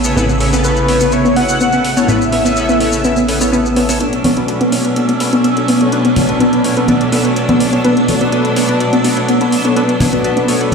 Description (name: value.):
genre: progressive house.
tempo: 125 BPM.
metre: 4/4.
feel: straight.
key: B minor.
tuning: A4 = 439 Hz.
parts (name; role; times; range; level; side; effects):
rich studio string section; sustained chords; 0.0-10.7 s; B2 to D4; -18 LUFS; right 1 dB; stereo widening.
chorused polysynth; stabs; 0.0-10.7 s; B3 to E5; -18 LUFS; left 1 dB; digital delay.
plucky analog bass; bass; 0.0-4.0 s; A1; -20 LUFS; right 1 dB; tube saturation.
maracas; percussion; 0.0-4.0 s; none; -24 LUFS; left 4 dB; none.
backwards swelling texture; texture; 0.0-10.7 s; E6; -27 LUFS; right 4 dB; built-in reverb.
soft round pluck; arpeggios; 0.2-10.7 s; B3; -15 LUFS; left 1 dB; lush chorus, digital delay.
electronic hi-hat; drums; 0.4-10.7 s; none; -24 LUFS; left 1 dB; overdrive, high-pass filter on hats, small room ambience.
wide unison lead; melody; 0.6-3.5 s; B4 to F#5; -17 LUFS; equal; analog chorus, digital delay.
swell; sound effects; 3.2-4.0 s; none; -22 LUFS; right 4 dB; none.
congas; percussion; 4.2-10.7 s; none; -19 LUFS; left 2 dB; none.
room: moderate digital room reverb, RT60 0.9 s, digital ambience.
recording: played on a big sound system in a bare room, large studio reverb.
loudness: -11 LUFS.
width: side -5 dB against mid.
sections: 0.0-4.0 A section; 4.0-10.7 B section.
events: filter sweep on synth pluck 0.0-4.0, 4.0-10.7; filter sweep on analog polysynth 0.0-4.0, 4.0-10.7; build-up 4.0-10.7.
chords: 0.0 Aadd9; 4.0 Bm7.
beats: | 0.17 0.65 1.12 1.60 | 2.08 2.56 3.04 3.52 | 4.00 4.49 4.96 5.45 | 5.92 6.41 6.88 7.37 | 7.84 8.32 8.80 9.29 | 9.77 10.24 10.72.